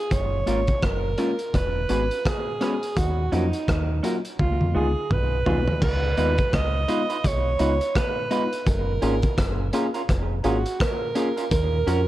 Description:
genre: lovers rock reggae.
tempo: 84 BPM.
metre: 4/4.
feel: swing 60% on 16ths.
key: F# major.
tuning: A4 = 441 Hz.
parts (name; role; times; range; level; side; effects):
bright alto saxophone; melody; 0.0-12.1 s; D#4 to D#5; -27 LUFS; right 3 dB; tape echo.
deep dub fingered electric bass; bass; 0.1-12.1 s; E1 to E#2; -25 LUFS; equal; none.
crunchy breakbeat drum kit; drums; 0.1-12.1 s; crash cymbal, hi-hat, kick drum, rim click, toms; -26 LUFS; equal; gated reverb.
mellow tine electric piano; accompaniment; 0.5-12.0 s; F#3 to A#4; -29 LUFS; left 3 dB; dub echo.
electric guitar through a small old amp; stabs; 0.5-12.0 s; B3 to B4; -31 LUFS; right 3 dB; dub echo.
room: small room ambience.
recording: none.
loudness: -21 LUFS.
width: side -14 dB against mid.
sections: 0.0-5.8 A section; 5.8-12.1 B section.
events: drum fill 4.4-5.8.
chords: 0.1 F#maj7; 1.5 E6; 3.0 D#m7; 4.4 C#9; 8.7 F#maj7; 11.5 D#m7.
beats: | 0.11 0.82 1.54 2.25 | 2.96 3.68 4.39 5.10 | 5.82 6.53 7.24 7.95 | 8.67 9.38 10.09 10.80 | 11.52.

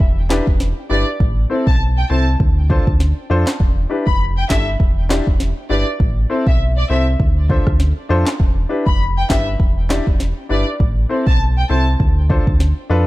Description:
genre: dancehall.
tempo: 100 BPM.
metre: 4/4.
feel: swing 56% on 16ths.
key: E phrygian.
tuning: A4 = 440 Hz.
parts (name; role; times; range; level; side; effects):
sub bass with octave; bass; 0.0-13.0 s; E1 to F2; -17 LUFS; equal; none.
afro-pop drum kit; drums; 0.0-12.8 s; handclaps, kick drum, rim click, snare drum; -17 LUFS; equal; none.
warm grand piano; accompaniment; 0.3-13.0 s; C4 to D5; -22 LUFS; left 2 dB; sidechain pumping.
warm studio violin section; melody; 0.9-11.8 s; D5 to B5; -25 LUFS; left 1 dB; tape echo.
room: small room ambience.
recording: dark, warm production.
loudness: -14 LUFS.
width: side -18 dB against mid.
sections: 0.0-13.1 A section.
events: none.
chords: 0.0 Em7; 1.2 Am; 2.4 Dm7; 3.6 Em7; 6.0 Am; 7.2 Dm7; 8.4 Em7; 10.8 Am; 12.0 Dm7.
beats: 0.00 0.60 | 1.20 1.80 2.40 3.00 | 3.60 4.20 4.80 5.40 | 6.00 6.60 7.20 7.80 | 8.40 9.00 9.60 10.20 | 10.80 11.40 12.00 12.60.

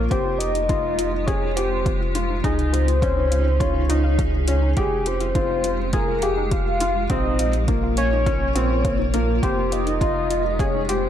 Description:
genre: piano and strings electronica.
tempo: 103 BPM.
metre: 4/4.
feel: straight.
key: F minor.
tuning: A4 = 436 Hz.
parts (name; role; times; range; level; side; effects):
granular cloud pad; sustained chords; 0.0-11.1 s; Ab3 to Bb4; -29 LUFS; equal; built-in reverb, sidechain pumping.
felt-muted upright piano; riff; 0.0-11.1 s; Bb3 to Ab4; -26 LUFS; left 2 dB; ping-pong delay.
warm sub bass; bass; 0.0-11.1 s; F1 to Db2; -24 LUFS; equal; sidechain pumping.
warm velvety synth lead; melody; 0.1-11.1 s; Ab4 to F5; -25 LUFS; equal; chorus, tremolo.
warbly dusty pluck; arpeggios; 0.1-11.0 s; Eb4 to F5; -33 LUFS; left 3 dB; chorus, sidechain pumping, ping-pong delay.
electronic hi-hat; drums; 0.1-11.0 s; none; -32 LUFS; left 2 dB; overdrive.
electronic kick drum; drums; 0.1-10.7 s; none; -25 LUFS; equal; overdrive.
room: light reverb, digital ambience.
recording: dark, warm production.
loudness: -19 LUFS.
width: side -10 dB against mid.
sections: 0.0-11.1 A section.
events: none.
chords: 0.1 Fmadd9; 2.4 Dbsus2; 4.8 Fmadd9; 7.1 Bbmadd9; 9.4 Fmadd9.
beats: | 0.11 0.69 1.28 1.86 | 2.44 3.02 3.61 4.19 | 4.77 5.35 5.94 6.52 | 7.10 7.68 8.27 8.85 | 9.43 10.01 10.60.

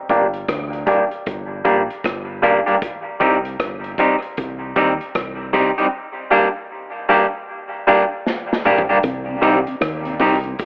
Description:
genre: dub reggae.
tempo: 77 BPM.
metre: 4/4.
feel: swing 62% on 16ths.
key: C minor.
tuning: A4 = 439 Hz.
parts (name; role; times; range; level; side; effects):
electric guitar at the edge of break-up; accompaniment; 0.1-10.4 s; G3 to G4; -17 LUFS; equal; tremolo, low-pass filter, dub echo.
deep dub fingered electric bass; bass; 0.1-10.5 s; G1 to Eb2; -28 LUFS; equal; none.
vintage drum kit; drums; 0.1-10.7 s; hi-hat, kick drum, rim click, snare drum, toms; -25 LUFS; equal; none.
electric guitar with an envelope filter; riff; 9.0-10.4 s; C3 to Eb3; -26 LUFS; left 1 dB; none.
mellow tonewheel organ; accompaniment; 9.3-10.5 s; C3 to Eb4; -24 LUFS; equal; chorus vibrato, slow rotary speaker.
room: moderate spring reverb, RT60 1.8 s.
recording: telephone sound.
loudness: -16 LUFS.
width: side -35 dB against mid.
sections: 0.0-9.0 A section; 9.0-10.7 B section.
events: filter sweep on clean electric guitar 0.0-9.0; drum fill 8.3-9.0.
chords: 0.0 Gm; 2.8 Cm; 5.9 Gm; 9.0 Cm.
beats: 0.49 1.26 2.04 | 2.82 3.60 4.38 5.15 | 5.93 6.71 7.49 8.26 | 9.04 9.81 10.59.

